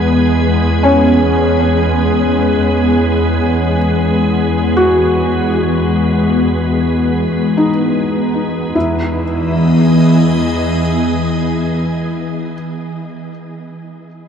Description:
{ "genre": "ambient", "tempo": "free time", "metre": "none", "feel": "none", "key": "E major", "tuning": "A4 = 440 Hz", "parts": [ { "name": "soft additive organ-like pad", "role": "sustained chords", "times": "0.0-13.0 s", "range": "E3 to D#5", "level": "-15 LUFS", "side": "equal", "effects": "ensemble chorus, built-in reverb" }, { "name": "felt-muted upright piano", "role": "arpeggios", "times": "0.0-14.3 s", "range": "C#4 to F#4", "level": "-19 LUFS", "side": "left 1 dB", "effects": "ping-pong delay" }, { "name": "rich symphonic double bass section", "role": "bass", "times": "0.0-11.8 s", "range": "E2", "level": "-19 LUFS", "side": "equal", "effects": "none" }, { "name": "analog drone", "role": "drone", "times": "0.0-12.5 s", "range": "E3 to G#4", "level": "-22 LUFS", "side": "equal", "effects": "chorus" } ], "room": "wet huge ambient reverb, RT60 8.5 s", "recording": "dark, warm production", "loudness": "-12 LUFS", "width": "side -7 dB against mid", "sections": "0.0-8.8 A section; 8.8-12.8 B section", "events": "none", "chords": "0.0 Emaj7", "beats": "free time" }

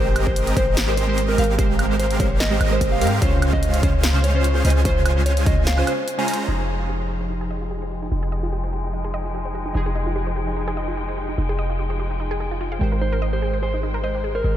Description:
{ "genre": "future bass", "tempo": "147 BPM", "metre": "4/4", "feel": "swing 54% on 16ths, half-time", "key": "F minor", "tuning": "A4 = 440 Hz", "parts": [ { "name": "mellow electric guitar", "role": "melody", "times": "0.0-6.4, 13.0-14.6 s", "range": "Bb4 to Ab5", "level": "-27 LUFS", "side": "equal", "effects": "sidechain pumping, ping-pong delay" }, { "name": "glassy digital keys", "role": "accompaniment", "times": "0.0-14.6 s", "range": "Db3 to F5", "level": "-27 LUFS", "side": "right 2 dB", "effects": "chorus, sidechain pumping, tape echo" }, { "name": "supersaw chords", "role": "riff", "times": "0.0-6.5 s", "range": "Ab3 to Bb5", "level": "-26 LUFS", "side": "right 1 dB", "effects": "sidechain pumping, low-pass filter, tape echo" }, { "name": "warm 808-style bass", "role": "bass", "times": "0.0-14.6 s", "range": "F1 to Ab2", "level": "-22 LUFS", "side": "equal", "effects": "sidechain pumping" }, { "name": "big-room dance drum kit", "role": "drums", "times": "0.2-6.4 s", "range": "hi-hat, snare drum, woodblock", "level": "-28 LUFS", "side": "equal", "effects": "none" }, { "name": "electronic kick drum", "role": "drums", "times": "0.3-5.6 s", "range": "none", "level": "-22 LUFS", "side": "equal", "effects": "none" }, { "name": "muted studio string section", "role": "sustained chords", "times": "6.5-14.6 s", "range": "F3 to G5", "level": "-31 LUFS", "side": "left 2 dB", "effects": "sidechain pumping, low-pass filter" }, { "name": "wide unison pluck", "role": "arpeggios", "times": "6.5-14.5 s", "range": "Eb4 to G5", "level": "-31 LUFS", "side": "right 1 dB", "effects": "sidechain pumping, tape echo" } ], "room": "light reverb, digital ambience", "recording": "none", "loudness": "-19 LUFS", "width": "side -11 dB against mid", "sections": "0.0-6.5 A section; 6.5-14.6 B section", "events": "drop 0.0-6.5; break 6.1-6.5; filter sweep on synth arpeggio sound 6.5-14.6; filter sweep on string section 6.5-14.6", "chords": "0.0 Abmaj9; 3.2 Dbmaj7; 6.5 Fm9; 12.8 Abmaj9", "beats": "0.36 0.77 1.18 | 1.59 2.00 2.40 2.81 | 3.22 3.63 4.04 4.44 | 4.85 5.26 5.67 6.08 | 6.49 6.89 7.30 7.71 | 8.12 8.53 8.93 9.34 | 9.75 10.16 10.57 10.97 | 11.38 11.79 12.20 12.61 | 13.02 13.42 13.83 14.24" }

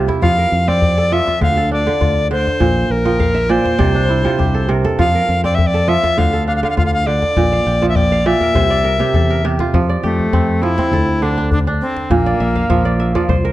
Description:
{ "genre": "west african traditional, West African string and xylophone music", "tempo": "101 BPM", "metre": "4/4", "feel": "straight", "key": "F major", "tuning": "A4 = 440 Hz", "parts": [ { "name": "kora", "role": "arpeggios", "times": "0.0-13.5 s", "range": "Bb2 to A5", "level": "-18 LUFS", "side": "right 3 dB", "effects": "none" }, { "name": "fingered electric bass", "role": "bass", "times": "0.0-13.5 s", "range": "Bb1 to F2", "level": "-19 LUFS", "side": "equal", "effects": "none" }, { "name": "djembe", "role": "percussion", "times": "0.1-13.4 s", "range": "none", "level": "-20 LUFS", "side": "left 2 dB", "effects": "none" }, { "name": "bright reedy bass recorder", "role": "melody", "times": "0.2-13.3 s", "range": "A3 to F5", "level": "-18 LUFS", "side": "left 1 dB", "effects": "none" } ], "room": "light reverb", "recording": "dark, warm production", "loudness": "-13 LUFS", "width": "side -15 dB against mid", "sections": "0.0-9.7 A section; 9.7-13.5 B section", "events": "kora fill 0.0, 3.1-5.0, 7.5-9.7, 12.3-13.5", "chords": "0.2 F; 1.4 Dm; 2.6 Bb5; 3.8 C13; 5.0 F; 6.2 Dm; 7.4 Bb; 8.6 C; 9.7 F; 10.9 Dm; 12.1 Bb5", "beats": "| 0.22 0.82 1.41 2.01 | 2.61 3.20 3.80 4.39 | 4.99 5.58 6.18 6.77 | 7.37 7.96 8.55 9.14 | 9.74 10.33 10.92 11.51 | 12.10 12.70 13.29" }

